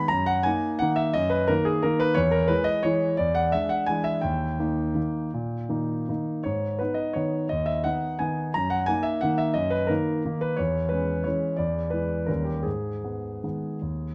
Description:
classical, piano waltz; 150-188 BPM; 3/4; rubato; A4 = 440 Hz
warm concert grand piano; solo; 0.0-14.1 s; D#2 to A#5; -26 LUFS; equal
light reverb; close, detailed microphones; -26 LUFS; mono
0.0-14.1 A section
0.1 D#m/F#; 2.2 C#m/E; 3.2 E7; 4.2 D#; 6.5 G#m; 8.5 D#m/F#; 10.6 C#m/E; 11.6 E7; 12.3 D#7; 12.7 G#m

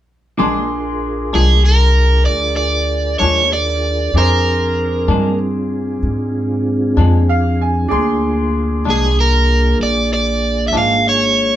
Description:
blues; 64 BPM (dotted quarters); 12/8; straight; Bb mixolydian; A4 = 438 Hz
bright upright piano; accompaniment; 0.4-11.6 s; D4 to C6; -24 LUFS; right 2 dB
clean electric guitar; accompaniment; 0.4-10.9 s; Bb2 to D4; -20 LUFS; left 3 dB; tremolo
mellow tonewheel organ; sustained chords; 0.4-11.6 s; Bb3 to Bb4; -21 LUFS; equal; chorus vibrato, slow rotary speaker
upright bass; bass; 0.4-11.6 s; Ab1 to Ab2; -17 LUFS; equal
crunchy overdriven guitar; melody; 1.4-11.6 s; Ab4 to F5; -16 LUFS; right 2 dB
wet studio reverb, RT60 0.6 s; band playing live in one room; -13 LUFS; side -12 dB against mid
0.4-11.6 A section
upright piano fill 7.0-7.9
0.4 Bb7

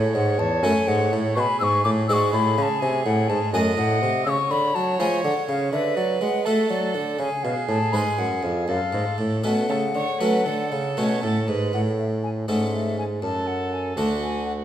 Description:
classical, baroque-style sonata movement with continuo; 82 BPM (dotted quarters); 12/8; straight; F# minor; A4 = 440 Hz
dark violin; second line; 0.0-14.6 s; F#4 to Eb5; -28 LUFS; right 5 dB
harpsichord; accompaniment; 0.0-14.6 s; D2 to Eb5; -25 LUFS; equal
warm bassoon; bass; 0.0-14.6 s; D2 to A3; -26 LUFS; right 2 dB
hollow wooden flute; melody; 0.2-14.5 s; D5 to E6; -26 LUFS; left 5 dB
wet recital hall reverb, RT60 1.5 s; -20 LUFS; side -10 dB against mid
0.0-11.7 A section; 11.7-14.6 A section
0.0 F#m; 1.4 G#m7b5; 2.8 Cdim7; 4.3 C#; 5.7 D; 7.2 C#7; 8.7 F#m; 11.7 A; 13.2 D/F#

